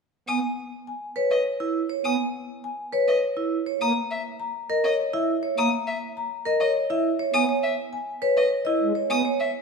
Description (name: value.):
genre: classical, minimalist pattern music.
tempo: 102 BPM.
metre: 3/4.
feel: straight.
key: C# dorian.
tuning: A4 = 439 Hz.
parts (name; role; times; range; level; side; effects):
marimba with soft mallets; melody; 0.3-9.3 s; B4 to A#5; -26 LUFS; left 5 dB; none.
pipe organ, strings celeste; accompaniment; 0.3-9.2 s; G#3 to B3; -29 LUFS; right 3 dB; none.
rich violin; arpeggios; 0.3-9.5 s; D#5 to D#6; -29 LUFS; left 2 dB; none.
vibraphone with medium hard mallets; arpeggios; 1.2-9.4 s; E4 to C#5; -26 LUFS; right 6 dB; none.
room: wet recital hall reverb, RT60 1.6 s.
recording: minimal, uncompressed stereo recording.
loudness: -22 LUFS.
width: side -4 dB against mid.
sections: 0.3-9.6 A section.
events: none.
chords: 0.3 C#m7; 3.8 A#dim; 7.3 C#m7.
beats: | 0.28 0.87 1.46 | 2.04 2.63 3.22 | 3.81 4.40 4.99 | 5.58 6.16 6.75 | 7.34 7.93 8.52 | 9.10.